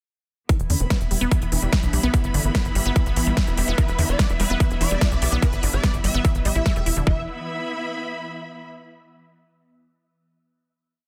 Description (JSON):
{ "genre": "psychedelic trance", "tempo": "146 BPM", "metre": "4/4", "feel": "straight", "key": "E minor", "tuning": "A4 = 440 Hz", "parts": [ { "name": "evolving wavetable pad", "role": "sustained chords", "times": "1.2-7.1 s", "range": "E3 to B3", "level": "-37 LUFS", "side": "equal", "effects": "none" }, { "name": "unison pluck", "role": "riff", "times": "0.5-7.3 s", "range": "D3 to E4", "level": "-31 LUFS", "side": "equal", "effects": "sidechain pumping, tape echo" }, { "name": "big-room dance drum kit", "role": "drums", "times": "0.5-7.0 s", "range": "hi-hat, snare drum", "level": "-30 LUFS", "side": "equal", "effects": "overdrive, studio reverb" }, { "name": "electronic kick drum", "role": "drums", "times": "0.5-7.2 s", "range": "none", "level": "-24 LUFS", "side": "equal", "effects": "overdrive, studio reverb" }, { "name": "warm studio string section", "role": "texture", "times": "0.5-8.7 s", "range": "B3 to B5", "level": "-34 LUFS", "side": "equal", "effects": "sidechain pumping" }, { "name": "tight sequencer bass", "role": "bass", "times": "0.6-7.3 s", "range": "E1 to E2", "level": "-25 LUFS", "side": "equal", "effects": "none" }, { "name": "vowel-sweep wobble bass", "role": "second line", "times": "0.8-6.8 s", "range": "G3 to D4", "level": "-41 LUFS", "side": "equal", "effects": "none" }, { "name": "swarming rave lead", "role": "melody", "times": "3.8-7.2 s", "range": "B4 to E5", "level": "-34 LUFS", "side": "equal", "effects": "chorus, phaser, sidechain pumping, dub echo" } ], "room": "light reverb, digital ambience", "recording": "dense, heavily limited modern master", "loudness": "-22 LUFS", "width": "mono", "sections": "0.5-7.1 groove; 7.1-8.7 final chord", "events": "none", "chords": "0.5 E5" }